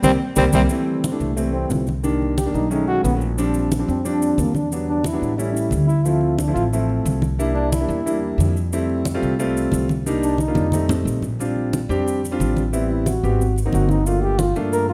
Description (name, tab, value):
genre	Afro-Cuban jazz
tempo	180 BPM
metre	4/4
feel	straight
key	Bb major from 11.4 s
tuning	A4 = 440 Hz
part	growling tenor saxophone	melody	0.0-0.6 s	C4	-24 LUFS	equal	none
part	mellow trombone	second line	0.0-8.2, 10.2-14.9 s	F3 to Bb4	-26 LUFS	equal	none
part	warm grand piano	accompaniment	0.0-14.9 s	Eb3 to G4	-25 LUFS	equal	none
part	upright bass	bass	0.0-14.9 s	G1 to G2	-25 LUFS	equal	none
part	congas	percussion	0.0-14.9 s	none	-29 LUFS	equal	none
part	maracas	percussion	0.0-14.9 s	none	-38 LUFS	equal	none
room	moderate recital hall reverb, RT60 1.6 s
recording	none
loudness	-20 LUFS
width	mono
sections	0.7-11.4 A section; 11.4-14.9 A section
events	band accent 0.0-0.7; trombone solo 0.7-14.9; drum fill 10.4-11.4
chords	0.0 C5; 0.7 C69; 2.0 Cm7; 2.7 B13; 3.4 Bb69; 4.7 Em7; 5.4 A7; 6.1 Dm7; 7.4 C7; 8.7 Fmaj9; 10.1 Cm7; 10.7 F7; 11.4 Bb69; 12.7 Am9; 13.4 Ab9; 14.1 Gm9